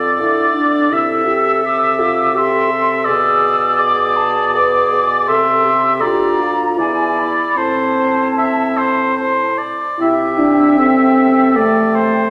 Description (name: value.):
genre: classical, slow romantic movement for wind quintet.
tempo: 73-86 BPM.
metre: 3/4.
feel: rubato.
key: A minor.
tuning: A4 = 442 Hz.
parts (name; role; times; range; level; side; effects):
warm oboe; second line; 0.0-12.3 s; C5 to E5; -19 LUFS; equal; none.
mellow clarinet; accompaniment; 0.0-12.3 s; E4 to A4; -24 LUFS; equal; none.
dark bassoon; bass; 0.0-12.3 s; D2 to D3; -27 LUFS; equal; none.
mellow French horn; accompaniment; 0.2-12.3 s; A3 to B4; -20 LUFS; equal; none.
mellow hollow silver concert flute; melody; 0.9-12.3 s; G5 to E6; -21 LUFS; equal; none.
room: wet recital hall reverb, RT60 1.5 s.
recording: lossy compression artefacts.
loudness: -15 LUFS.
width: mono.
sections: 0.0-10.0 A section; 10.0-12.3 B section.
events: none.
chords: 0.0 Dm/F; 0.9 Am/C; 3.1 E7/B; 5.3 Am/C; 6.0 Bb/D; 6.8 E7; 7.6 Am; 10.0 C.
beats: 0.20 | 0.92 1.64 2.36 | 3.07 3.79 4.55 | 5.28 6.01 6.78 | 7.57 8.38 9.19 | 10.00 10.78 11.55.